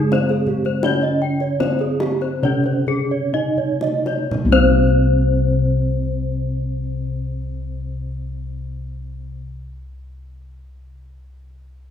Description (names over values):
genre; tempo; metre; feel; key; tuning
Balinese gamelan; 58-88 BPM; 4/4; straight; C pelog; A4 = 439 Hz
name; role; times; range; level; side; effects
gamelan-type bronze metallophone; melody; 0.0-9.4 s; Ab3 to Eb4; -24 LUFS; right 2 dB; none
gamelan-type bronze metallophone; accompaniment; 0.0-9.4 s; C3 to Ab3; -26 LUFS; left 3 dB; none
gamelan-type bronze metallophone; arpeggios; 0.0-9.4 s; G4 to Eb5; -25 LUFS; right 5 dB; none
gamelan-type bossed gongs; bass; 0.0-9.3 s; C2 to Db4+35c; -23 LUFS; left 1 dB; none
gamelan-type bronze metallophone; arpeggios; 0.1-9.4 s; Ab4 to G5; -23 LUFS; left 7 dB; none
kendang; percussion; 0.1-4.8 s; none; -27 LUFS; left 2 dB; none
room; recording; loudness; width
wet recital hall reverb, RT60 1.6 s; minimal, uncompressed stereo recording; -17 LUFS; side -8 dB against mid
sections
0.0-4.3 A section; 4.3-8.5 B section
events
slowing down 0.0-4.3; drum fill 3.6-4.3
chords
none